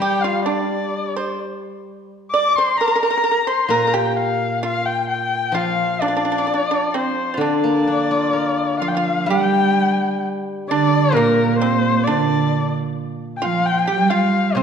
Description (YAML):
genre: chinese traditional, Chinese chamber ensemble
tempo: 65 BPM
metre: 2/4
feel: rubato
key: D jue mode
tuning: A4 = 442 Hz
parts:
  - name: dark erhu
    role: melody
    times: 0.0-14.6 s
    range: Bb4 to D6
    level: -20 LUFS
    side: left 4 dB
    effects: none
  - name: pipa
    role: second line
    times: 0.0-14.6 s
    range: Bb3 to D5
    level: -22 LUFS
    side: right 4 dB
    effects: none
  - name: steel-string zither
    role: accompaniment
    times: 0.0-14.6 s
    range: Bb2 to Bb4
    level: -23 LUFS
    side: left 2 dB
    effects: none
  - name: warm cello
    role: second line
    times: 8.8-14.6 s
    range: Bb2 to G3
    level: -20 LUFS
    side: right 5 dB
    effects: none
room: wet scoring stage reverb, RT60 1.7 s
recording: dark, warm production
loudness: -16 LUFS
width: side -7 dB against mid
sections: 0.0-9.3 A section; 9.3-14.6 B section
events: none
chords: none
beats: | 0.01 0.94 | 1.87 2.79 | 3.71 4.63 | 5.55 6.47 | 7.41 8.35 | 9.29 10.23 | 11.16 12.07 | 12.97 13.88